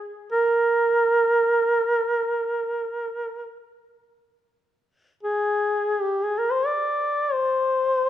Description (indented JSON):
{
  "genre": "caucasian folk, Caucasian lament",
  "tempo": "free time",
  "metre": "none",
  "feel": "none",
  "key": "unclear",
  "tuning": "A4 = 440 Hz",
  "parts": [
    { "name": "mellow duduk", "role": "solo", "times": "0.3-8.1 s", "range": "G4 to D5", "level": "-21 LUFS", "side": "equal", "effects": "none" }
  ],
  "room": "moderate scoring stage reverb, RT60 2.0 s",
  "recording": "minimal, uncompressed stereo recording",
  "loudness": "-20 LUFS",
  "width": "side -11 dB against mid",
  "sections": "0.0-8.1 A section",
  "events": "none",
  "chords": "none",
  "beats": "free time"
}